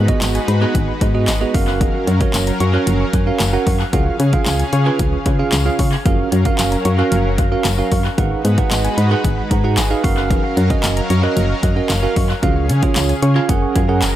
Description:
dance-pop; 113 BPM; 4/4; straight; F# major; A4 = 440 Hz
lush unison pad; sustained chords; 0.0-14.2 s; C#3 to E#5; -24 LUFS; left 1 dB; chorus, sidechain pumping
thumb-piano-like synth pluck; arpeggios; 0.0-14.1 s; D#3 to G#6; -27 LUFS; left 4 dB; chorus, sidechain pumping, tape echo
solid FM bass; bass; 0.0-14.2 s; F#1 to C#3; -17 LUFS; left 1 dB; sidechain pumping
downlifter; sound effects; 0.0-1.8 s; barely audible
bell-like tine electric piano; accompaniment; 0.1-14.0 s; B3 to A#5; -20 LUFS; right 5 dB; sidechain pumping, tape echo
punchy analog drum machine; drums; 0.1-14.1 s; handclaps, hi-hat, kick drum, snare drum; -20 LUFS; equal; tape echo
tambourine; percussion; 0.2-14.1 s; -29 LUFS; left 9 dB
light reverb; echo-heavy mix; -14 LUFS; side -12 dB against mid
0.0-14.2 A section
tine electric piano fill 9.2-10.3
0.0 G#m7; 1.5 F#maj7; 3.9 C#; 6.1 F#maj7; 8.2 G#m7; 10.0 F#maj7; 12.4 C#; 13.5 F#add9

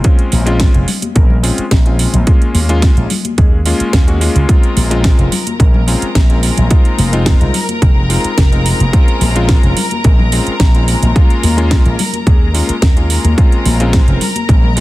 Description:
nu-disco, nu disco; 108 BPM; 4/4; straight; Bb minor; A4 = 439 Hz
warm electric grand piano; accompaniment; 0.0-14.8 s; Ab3 to Bb4; -19 LUFS; left 2 dB; sidechain pumping, tape echo
electronic kick drum; drums; 0.0-14.6 s; -10 LUFS; equal; small room ambience
house drum kit; drums; 0.0-14.8 s; hi-hat, snare drum; -19 LUFS; right 2 dB; small room ambience
slap bass with an envelope filter; bass; 0.3-14.8 s; F1 to Eb2; -14 LUFS; equal
congas; percussion; 0.3-14.7 s; -22 LUFS; left 4 dB
clear symphonic string section; sustained chords; 4.5-14.8 s; Bb4 to Bb5; -22 LUFS; left 1 dB; sidechain pumping
little or no reverb; dense, heavily limited modern master; -9 LUFS; side -17 dB against mid
0.0-14.8 A section
0.0 Bbm7; 2.3 Eb7sus4; 4.5 Bbm7; 6.7 Fm7; 8.9 Bbm7; 11.2 Eb7sus4; 13.4 Bbm7

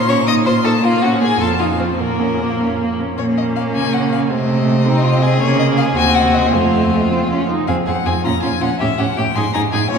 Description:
quick classical-period movement for string quartet; 106 BPM (dotted quarters); 6/8; rubato; Bb minor; A4 = 440 Hz
rich violin; melody; 0.0-10.0 s; Bb4 to Eb6; -21 LUFS; left 6 dB
rich viola; accompaniment; 0.0-10.0 s; A3 to F4; -20 LUFS; right 1 dB
rich cello; bass; 0.0-10.0 s; Eb2 to Db3; -18 LUFS; right 3 dB
clear violin; second line; 0.1-10.0 s; Bb3 to Eb5; -21 LUFS; left 2 dB
wet cathedral reverb, RT60 6.8 s; recorded in a church or concert hall; -14 LUFS; side -6 dB against mid
0.0-3.2 A section; 3.2-10.0 B section
0.3 Bbsus24; 0.8 Bbm; 1.4 F7; 2.0 Bbm; 4.3 F7/C (rootless); 5.4 Bbm/Db; 6.0 Cdim/Eb; 6.5 F; 7.7 Fm; 8.3 Bbm; 8.8 A7; 9.4 Ab5

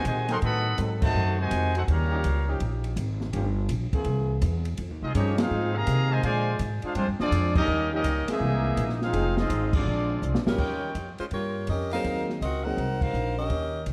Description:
jazz, big band swing; 165 BPM; 4/4; swing 65% on 8ths; Eb major, Eb mixolydian from 10.6 s; A4 = 444 Hz
clear trumpet section; melody; 0.0-2.6, 5.0-10.4 s; Ab3 to C6; -32 LUFS; equal
warm trombone section; second line; 0.0-2.6, 5.0-10.4 s; C3 to F#4; -33 LUFS; equal
upright bass; bass; 0.0-13.9 s; F1 to C3; -30 LUFS; equal
open jazz drum kit; drums; 0.0-13.9 s; crash cymbal, hi-hat, kick drum, ride cymbal, snare drum; -34 LUFS; equal
bright trombone section; sustained chords; 0.3-5.7, 7.9-10.9 s; Fb3 to A4; -37 LUFS; equal
bright saxophone section; melody; 10.5-13.8 s; G3 to Gb5; -32 LUFS; equal
clear trumpet section; stabs; 10.6-11.1 s; F4 to G5; -39 LUFS; equal
warm grand piano; accompaniment; 11.9-12.8 s; Gb3 to Ab4; -36 LUFS; equal
moderate scoring stage reverb, RT60 1.5 s; dark, warm production; -26 LUFS; mono
0.0-10.6 A section; 10.6-13.9 B section
band accent 1.0, 5.3, 7.5, 9.7, 13.0; drum fill 10.2-10.6
0.4 Adim7; 1.9 Eb9; 3.3 Gm7b5; 4.1 Caug7; 4.8 Fm7; 6.2 Bb9; 7.7 Eb7; 8.4 C7alt; 9.1 Fm7; 9.9 Bb9; 10.6 Eb9; 12.0 Ab9

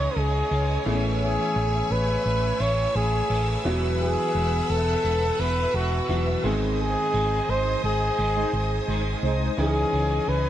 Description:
pop; 86 BPM; 4/4; straight; A4 = 444 Hz
breathy flugelhorn; melody; 0.0-10.5 s; F#4 to C#5; -26 LUFS; left 1 dB; shimmer reverb, ping-pong delay
clear baby grand piano; accompaniment; 0.0-10.5 s; D#3 to G#4; -30 LUFS; equal; shimmer reverb
overdriven electric guitar; accompaniment; 0.0-10.5 s; E2 to C#4; -35 LUFS; right 4 dB; ensemble chorus, shimmer reverb
string machine, violas; sustained chords; 0.0-10.5 s; B4 to E6; -31 LUFS; equal; ensemble chorus, shimmer reverb
hollow-body short-scale fingered electric bass; bass; 0.0-10.5 s; E1 to C#2; -26 LUFS; equal
mellow synth brass; stabs; 8.4-9.5 s; G#3 to B#4; -32 LUFS; right 1 dB; chorus, shimmer reverb, ping-pong delay
moderate small room reverb, RT60 0.6 s; -22 LUFS; side -12 dB against mid
0.0-10.5 A section
band accent 6.8-9.6
0.0 C#madd9; 0.9 Amaj7; 3.7 Esus2; 6.4 G#; 9.6 C#madd9

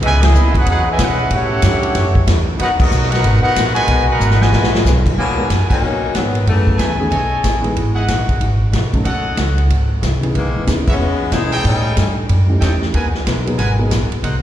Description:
jazz, big band swing; 185 BPM; 4/4; swing 63% on 8ths; G# minor; A4 = 440 Hz
clear trumpet section; melody; 0.0-4.9 s; B3 to G#5; -18 LUFS; equal; slapback echo
bright trombone section; second line; 0.0-4.8 s; B2 to G4; -24 LUFS; right 2 dB; slapback echo
archtop guitar, miked and amplified; accompaniment; 0.0-14.4 s; G#2 to A#4; -29 LUFS; left 6 dB; slapback echo
mellow trombone section; sustained chords; 0.0-5.1 s; C#3 to F#4; -27 LUFS; left 2 dB
upright bass; bass; 0.0-14.4 s; G#1 to B2; -16 LUFS; equal
swinging big-band drum kit; drums; 0.0-14.3 s; crash cymbal, hi-hat, kick drum, ride cymbal, snare drum; -20 LUFS; equal
clear saxophone section; melody; 5.2-7.0, 10.4-12.1 s; B2 to E4; -21 LUFS; left 4 dB; slapback echo
bright trumpet section; stabs; 5.2-14.4 s; G#4 to G#5; -23 LUFS; right 1 dB; slapback echo
dark concert grand piano; accompaniment; 5.4-13.9 s; D#3 to D#5; -24 LUFS; equal; slapback echo
light reverb; live gig heard through the venue's PA, recital hall reverb; -13 LUFS; side -11 dB against mid
0.0-5.2 A section; 5.2-14.4 B section
band accent 0.2, 2.8, 5.7, 10.8; drum fill 4.2-4.8
0.0 C#m9; 1.3 A7#11; 2.6 G#m9; 6.5 F#m11; 7.1 B13; 7.8 Emaj9; 9.1 D#m7b5; 9.7 G#7b9; 10.4 C#m9; 11.6 A7#11; 12.9 G#m9

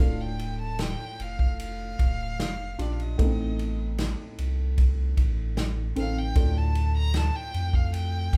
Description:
pop ballad; 76 BPM; 4/4; straight; A4 = 443 Hz
rich violin; melody; 0.0-8.4 s; D5 to Bb5; -38 LUFS; equal
felt-muted upright piano; accompaniment; 0.0-8.4 s; A2 to A4; -37 LUFS; equal
saturated sub bass; bass; 0.0-8.4 s; D1 to F2; -30 LUFS; equal
natural country drum kit; drums; 0.4-8.4 s; kick drum, ride cymbal, snare drum; -27 LUFS; equal
light reverb; band playing live in one room; -27 LUFS; mono
0.0-8.4 A section
0.0 Dm; 3.2 Adim; 6.4 Dm

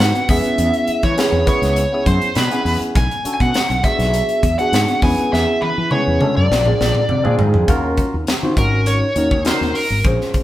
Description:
electric jazz fusion; 102 BPM; 4/4; straight; A4 = 440 Hz
smooth overdriven lead guitar; melody; 0.0-10.0 s; Bb4 to G#5; -19 LUFS; equal
barky tine electric piano; accompaniment; 0.0-10.4 s; B3 to C5; -21 LUFS; equal; overdrive, phaser
fretless electric bass; bass; 0.0-10.4 s; Ab1 to E3; -20 LUFS; equal
crisp fusion drum kit; drums; 0.0-10.4 s; hi-hat, kick drum, snare drum, toms; -20 LUFS; equal
moderate stone room reverb, RT60 1.2 s; band playing live in one room; -14 LUFS; side -14 dB against mid
0.0-7.7 A section; 7.7-10.4 B section
drum fill 5.3-7.7; lead electric guitar solo 7.7-10.4
0.3 E6; 1.5 F#9sus4 (rootless); 3.0 Bm9; 3.8 E7; 5.0 E6; 6.2 Bm9 (rootless); 6.5 A#7; 7.7 Ebm7; 8.6 Ab7sus4

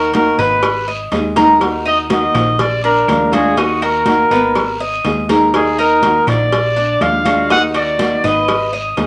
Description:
latin, Cuban son and guajira; 122 BPM; 4/4; straight; Eb harmonic minor; A4 = 440 Hz
warm trumpet; melody; 0.0-8.7 s; Gb4 to Gb5; -17 LUFS; equal
nylon-string guitar; accompaniment; 0.0-9.1 s; Eb3 to Ab4; -21 LUFS; equal
Cuban tres; arpeggios; 0.0-9.1 s; Cb4 to Eb5; -21 LUFS; equal
plucky analog bass; bass; 0.0-9.1 s; Ab1 to Eb2; -26 LUFS; equal
congas; percussion; 0.1-9.1 s; -26 LUFS; equal
cowbell; percussion; 0.1-9.1 s; -24 LUFS; equal
guiro; percussion; 0.1-9.1 s; -35 LUFS; equal
claves; percussion; 0.6-8.7 s; -34 LUFS; equal
wet studio ambience, RT60 0.5 s; -14 LUFS; mono
0.0-9.1 A section
0.0 Ebm; 0.6 Abm; 1.6 Ebm; 2.6 Bb7; 3.6 Ebm; 4.6 Abm; 5.5 Ebm; 6.5 Bb7; 7.5 Ebm; 8.5 Abm

